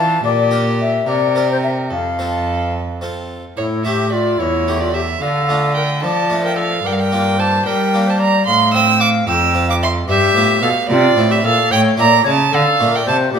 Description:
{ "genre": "classical, baroque-style sonata movement with continuo", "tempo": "74 BPM (dotted quarters)", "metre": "6/8", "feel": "straight", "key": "F major", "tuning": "A4 = 438 Hz", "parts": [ { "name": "bright baroque flute", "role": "melody", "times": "0.0-13.4 s", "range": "E4 to A5", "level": "-19 LUFS", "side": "left 6 dB", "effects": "none" }, { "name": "rich violin", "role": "second line", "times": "0.0-13.2 s", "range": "F4 to E6", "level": "-17 LUFS", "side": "right 5 dB", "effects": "none" }, { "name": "harpsichord", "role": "accompaniment", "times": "0.0-13.4 s", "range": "E2 to Bb4", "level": "-23 LUFS", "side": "equal", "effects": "none" }, { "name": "rich cello", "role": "bass", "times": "0.0-13.4 s", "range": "E2 to G3", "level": "-19 LUFS", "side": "right 2 dB", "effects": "none" } ], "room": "wet recital hall reverb, RT60 1.5 s", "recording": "none", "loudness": "-13 LUFS", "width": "side -7 dB against mid", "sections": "0.0-3.6 A section; 3.6-13.4 A section", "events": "none", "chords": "0.2 Gm/Bb; 1.1 C5; 1.9 F; 3.6 A5; 5.2 Dm; 6.9 Gm7; 8.5 F/A; 10.1 G7; 10.9 C; 11.7 A; 12.5 Dm" }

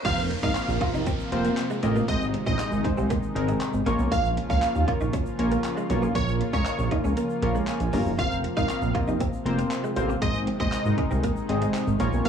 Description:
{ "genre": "dance-pop", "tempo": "118 BPM", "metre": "4/4", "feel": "straight", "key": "Bb minor", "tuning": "A4 = 440 Hz", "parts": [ { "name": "plucky unison lead", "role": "melody", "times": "0.0-12.3 s", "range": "Db5 to F5", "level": "-30 LUFS", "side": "right 1 dB", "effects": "phaser, cassette tape, tape echo" }, { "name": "warm analog keys", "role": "accompaniment", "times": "0.0-12.3 s", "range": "Ab3 to Bb5", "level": "-30 LUFS", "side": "left 3 dB", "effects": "chorus, sidechain pumping, cassette tape" }, { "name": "lush unison pad", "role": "sustained chords", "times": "0.0-12.3 s", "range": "C3 to F4", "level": "-32 LUFS", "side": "right 1 dB", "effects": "chorus, sidechain pumping, cassette tape" }, { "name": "direct-recorded clean electric guitar", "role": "riff", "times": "0.0-12.3 s", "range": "Ab3 to F4", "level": "-32 LUFS", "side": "right 4 dB", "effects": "ensemble chorus, cassette tape" }, { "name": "chorused synth bass", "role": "bass", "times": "0.0-12.3 s", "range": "F1 to Eb2", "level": "-26 LUFS", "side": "right 1 dB", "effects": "sidechain pumping" }, { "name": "pop drum kit", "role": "drums", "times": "0.0-12.3 s", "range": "crash cymbal, handclaps, hi-hat, kick drum", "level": "-30 LUFS", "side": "equal", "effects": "cassette tape" }, { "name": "egg shaker", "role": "percussion", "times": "0.0-12.3 s", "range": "none", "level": "-53 LUFS", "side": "left 12 dB", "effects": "none" }, { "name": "riser and downlifter", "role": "sound effects", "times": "0.0-4.1 s", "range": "none", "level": "-39 LUFS", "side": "right 1 dB", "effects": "none" } ], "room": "light reverb, digital ambience", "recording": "home recording on cassette, high-pass filter, small room ambience", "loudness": "-23 LUFS", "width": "side -7 dB against mid", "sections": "0.1-12.3 A section", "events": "drop 0.1-12.3; kick muted 7.2-8.2; synth keys fill 7.2-8.2", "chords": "0.1 Fsus4; 2.1 Ab; 3.9 Bbm; 8.2 Fsus4; 10.2 Ab" }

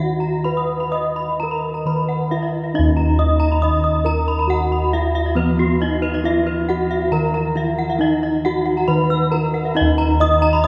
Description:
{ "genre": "Balinese gamelan", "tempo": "137 BPM", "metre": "4/4", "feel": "straight", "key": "Eb pelog", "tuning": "A4 = 441 Hz", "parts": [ { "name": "gamelan-type bronze metallophone", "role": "melody", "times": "0.0-10.7 s", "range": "Cb4 to Eb5", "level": "-24 LUFS", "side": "equal", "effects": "none" }, { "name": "gamelan-type bronze metallophone", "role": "arpeggios", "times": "0.0-10.7 s", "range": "Gb4 to Fb6+35c", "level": "-25 LUFS", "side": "equal", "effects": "none" }, { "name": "gamelan-type bossed gongs", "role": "bass", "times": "0.0-10.7 s", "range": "Eb2 to Eb5", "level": "-22 LUFS", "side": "equal", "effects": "none" } ], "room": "wet cathedral reverb, RT60 7.2 s", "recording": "recorded in a church or concert hall", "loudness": "-19 LUFS", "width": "mono", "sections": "0.0-2.7 A section; 2.7-10.7 B section", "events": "none", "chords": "none" }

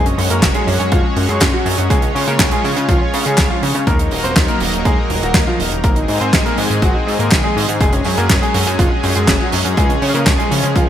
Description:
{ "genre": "italo disco", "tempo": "122 BPM", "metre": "4/4", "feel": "straight", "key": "unclear", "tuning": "A4 = 441 Hz", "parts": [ { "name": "clear baby grand piano", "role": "melody", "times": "0.0-10.8 s", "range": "F3 to C5", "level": "-20 LUFS", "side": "equal", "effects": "digital delay" }, { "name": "lush unison pad", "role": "sustained chords", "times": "0.0-10.9 s", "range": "Eb3 to Db5", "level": "-20 LUFS", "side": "equal", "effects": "chorus" }, { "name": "chorused synth bass", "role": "bass", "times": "0.0-10.9 s", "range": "Eb1 to Db3", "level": "-20 LUFS", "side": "equal", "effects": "none" }, { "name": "damped 70s drum kit", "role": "drums", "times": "0.1-10.9 s", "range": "handclaps, hi-hat, snare drum", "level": "-18 LUFS", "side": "right 1 dB", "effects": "small room reverb, gated reverb" }, { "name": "electronic kick drum", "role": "drums", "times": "0.4-10.9 s", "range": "none", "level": "-17 LUFS", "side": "equal", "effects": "small room reverb" } ], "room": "light reverb, studio ambience", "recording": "bright 1980s-style digital production", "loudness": "-13 LUFS", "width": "side -10 dB against mid", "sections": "0.0-10.9 A section", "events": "none", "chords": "0.0 Gbsus2; 1.9 Db; 3.9 Ebm; 5.8 Ab; 7.8 Gbsus2; 9.8 Db" }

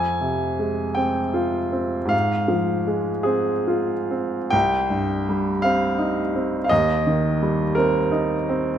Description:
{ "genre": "classical, romantic nocturne for solo piano", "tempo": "46-58 BPM (dotted quarters)", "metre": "6/8", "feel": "rubato", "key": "F minor", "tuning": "A4 = 440 Hz", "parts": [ { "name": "clear baby grand piano", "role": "solo", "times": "0.0-8.8 s", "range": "C2 to Ab5", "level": "-20 LUFS", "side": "equal", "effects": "none" } ], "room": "moderate scoring stage reverb, RT60 2.2 s", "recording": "none", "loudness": "-19 LUFS", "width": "side -9 dB against mid", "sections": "0.0-8.8 A section", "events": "none", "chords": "0.0 Fm; 2.1 Fm/Ab; 4.5 Cm; 6.7 Cm/Eb" }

